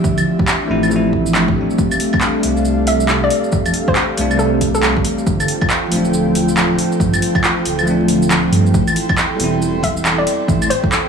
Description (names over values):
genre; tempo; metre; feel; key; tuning
future garage; 138 BPM; 4/4; swing 62% on 16ths; A minor; A4 = 436 Hz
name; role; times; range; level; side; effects
bell-like tine electric piano; accompaniment; 0.0-11.1 s; F3 to E4; -19 LUFS; left 1 dB; sidechain pumping, analog delay
airy breathy pad; sustained chords; 0.0-11.1 s; F3 to C6; -22 LUFS; right 2 dB; chorus, vintage 12-bit sampler grit, sidechain pumping
dark detuned saw bass; bass; 0.0-10.7 s; D1 to G2; -19 LUFS; right 1 dB; sidechain pumping
deep house drum kit; drums; 0.0-11.0 s; claves, handclaps, hi-hat, shaker; -19 LUFS; equal; overdrive, small room ambience
electronic kick drum; drums; 0.0-10.9 s; none; -20 LUFS; right 1 dB; overdrive, small room ambience
hollow square pluck; melody; 2.9-5.3, 9.8-10.9 s; A4 to E5; -21 LUFS; left 1 dB; chorus, analog delay
room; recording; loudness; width
moderate lush hall reverb, RT60 1.9 s; vinyl crackle, studio reverb; -13 LUFS; side -6 dB against mid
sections
0.0-8.7 A section; 8.7-11.1 B section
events
kick drops out 7.9-8.7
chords
0.0 Dm9; 1.8 F6; 5.3 G9sus4; 8.7 Am7